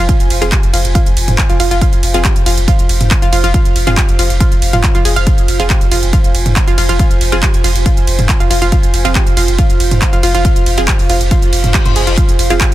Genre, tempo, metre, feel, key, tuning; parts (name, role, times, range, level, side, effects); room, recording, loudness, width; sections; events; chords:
driving peak-time techno; 139 BPM; 4/4; straight; F minor; A4 = 439 Hz
analog pluck; riff; 0.0-12.7 s; F4 to F5; -19 LUFS; equal; chorus, overdrive, sidechain pumping, dub echo
saturated sub bass; bass; 0.0-12.7 s; F1; -16 LUFS; equal; tube saturation, sidechain pumping, low-pass filter
airy breathy pad; texture; 0.0-12.7 s; F4 to Ab5; -22 LUFS; right 3 dB; chorus, sidechain pumping
electronic kick drum; drums; 0.1-12.7 s; -12 LUFS; equal
techno drum kit; drums; 0.1-12.7 s; handclaps, hi-hat, ride cymbal, toms; -18 LUFS; right 1 dB
filtered dub chord stab; stabs; 0.4-12.6 s; C4 to Ab4; -23 LUFS; right 2 dB; phaser, sidechain pumping, dub echo
reverse cymbal; sound effects; 11.5-12.2 s; -24 LUFS; left 6 dB
digital ambience; dense, heavily limited modern master; -9 LUFS; side -14 dB against mid
0.0-12.7 A section
reverse cymbal 11.5-12.2
0.0 Fm